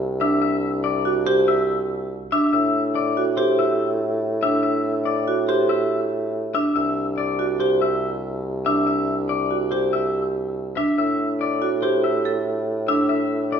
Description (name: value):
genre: classical, minimalist pattern music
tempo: 142 BPM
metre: 5/4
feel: straight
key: unclear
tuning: A4 = 440 Hz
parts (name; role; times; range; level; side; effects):
- mellow bassoon; bass; 0.0-13.6 s; C2 to A2; -25 LUFS; right 1 dB; none
- clean electric guitar; melody; 0.2-13.6 s; C5 to E5; -25 LUFS; left 7 dB; none
- marimba with medium hard mallets; arpeggios; 0.2-13.2 s; D4 to A4; -22 LUFS; right 3 dB; none
room: moderate recital hall reverb, RT60 1.6 s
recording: recorded in a church or concert hall, nothing above 10.8 kHz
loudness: -19 LUFS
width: side -7 dB against mid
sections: 0.0-13.6 A section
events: none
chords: 0.0 Cadd9; 2.5 A7(no3); 6.8 C; 11.0 A5